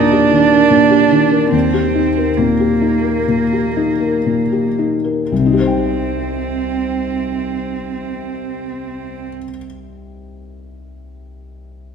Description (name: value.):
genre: neoclassical piano and strings.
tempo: 56-77 BPM.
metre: 4/4.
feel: rubato.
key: C minor.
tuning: A4 = 440 Hz.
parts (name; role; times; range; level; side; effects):
warm cello; second line; 0.0-9.3 s; Bb3 to D4; -16 LUFS; right 6 dB; none.
felt-muted upright piano; accompaniment; 0.0-11.9 s; C2 to G5; -17 LUFS; left 4 dB; none.
room: wet scoring stage reverb, RT60 1.8 s.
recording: none.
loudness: -13 LUFS.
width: side -7 dB against mid.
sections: 0.0-5.3 A section; 5.3-9.5 B section.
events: slowing down 0.0-5.3.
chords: 0.0 Eb; 5.3 Cm.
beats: 0.71 | 1.53 2.38 3.28 4.25 | 5.30 6.34 7.37 8.41.